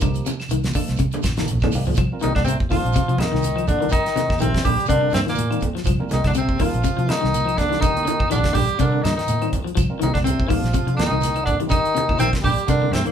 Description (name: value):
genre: afrobeat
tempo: 123 BPM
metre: 4/4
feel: swing 55% on 16ths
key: C dorian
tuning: A4 = 443 Hz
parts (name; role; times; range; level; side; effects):
- barky tine electric piano; accompaniment; 0.0-12.9 s; F3 to C5; -32 LUFS; right 3 dB; phaser
- electric guitar at the edge of break-up; arpeggios; 0.0-13.1 s; C3 to F3; -26 LUFS; left 4 dB; tremolo
- vintage muted fingered electric bass; bass; 0.0-13.0 s; A1 to C3; -24 LUFS; right 1 dB; none
- damped 70s drum kit; drums; 0.0-13.1 s; hi-hat, kick drum, snare drum; -24 LUFS; equal; none
- claves; percussion; 0.0-13.1 s; none; -39 LUFS; equal; none
- congas; percussion; 0.0-13.1 s; none; -28 LUFS; right 3 dB; none
- shekere; percussion; 0.0-13.1 s; none; -33 LUFS; right 5 dB; none
- clear tenor saxophone; melody; 2.2-13.1 s; Bb3 to G4; -23 LUFS; left 1 dB; none
- bright trombone; second line; 2.2-13.1 s; Bb2 to G3; -32 LUFS; right 3 dB; none
- clear bass trombone; second line; 2.2-13.1 s; Bb2 to G3; -31 LUFS; right 3 dB; none
room: wet studio ambience, RT60 0.5 s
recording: band playing live in one room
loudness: -18 LUFS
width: side -8 dB against mid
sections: 0.0-2.0 A section; 2.0-13.1 B section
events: drum fill 1.2-2.0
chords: 0.0 Cm9